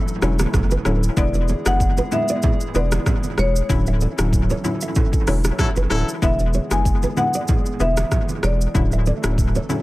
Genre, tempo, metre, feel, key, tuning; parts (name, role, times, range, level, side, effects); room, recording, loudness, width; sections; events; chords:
afrobeats; 95 BPM; 4/4; swing 55% on 16ths; E mixolydian; A4 = 440 Hz
hollow soft pad; sustained chords; 0.0-9.8 s; E3 to A4; -30 LUFS; equal; chorus
afro-pop drum kit; drums; 0.1-9.8 s; hi-hat, kick drum, rim click, shaker; -22 LUFS; equal
hollow square pluck; accompaniment; 0.2-9.8 s; C#3 to E4; -27 LUFS; left 4 dB; chorus, analog delay
nylon-string guitar; riff; 0.2-9.7 s; A4 to E5; -29 LUFS; right 3 dB; analog delay
saturated sub bass; bass; 0.2-9.6 s; D1 to F#1; -20 LUFS; equal
congas; percussion; 0.4-9.8 s; -28 LUFS; right 4 dB; analog delay
marimba with medium mallets; melody; 1.2-9.0 s; C#5 to G#5; -25 LUFS; left 1 dB; analog delay
clear horn section; second line; 5.6-6.1 s; F#3 to A4; -26 LUFS; left 3 dB
small room ambience; echo-heavy mix; -17 LUFS; side -18 dB against mid
0.0-9.8 A section
band accent 3.7-6.2
0.0 Dmaj9; 1.2 E7; 3.7 Dmaj9; 6.2 E7; 8.7 Dmaj9